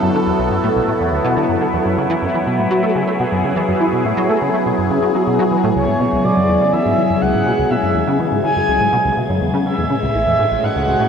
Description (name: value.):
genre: ambient, sequencer-driven space music.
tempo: 123 BPM.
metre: 4/4.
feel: straight.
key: C# minor.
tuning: A4 = 444 Hz.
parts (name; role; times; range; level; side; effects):
phased analog pad; sustained chords; 0.0-11.1 s; A2 to B4; -17 LUFS; equal; phaser, chorus.
plucky analog bass; riff; 0.0-11.1 s; A1 to A3; -19 LUFS; left 1 dB; ensemble chorus, ping-pong delay.
wind-like tuned noise texture; texture; 0.0-11.1 s; G#3 to G#6; -28 LUFS; equal; built-in reverb.
breathy flute-like synth lead; melody; 5.8-11.1 s; C#5 to G#5; -18 LUFS; right 1 dB; lush chorus, ping-pong delay.
room: wet lush hall reverb, RT60 2.7 s.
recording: none.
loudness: -14 LUFS.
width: side -7 dB against mid.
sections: 0.0-11.1 A section.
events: none.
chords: 0.0 Bm7; 1.9 F#m7; 5.8 C#m7; 9.7 Amaj7.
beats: 0.39 0.88 1.37 | 1.85 2.34 2.83 3.32 | 3.81 4.29 4.78 5.27 | 5.76 6.25 6.73 7.22 | 7.71 8.20 8.68 9.17 | 9.66 10.15 10.63.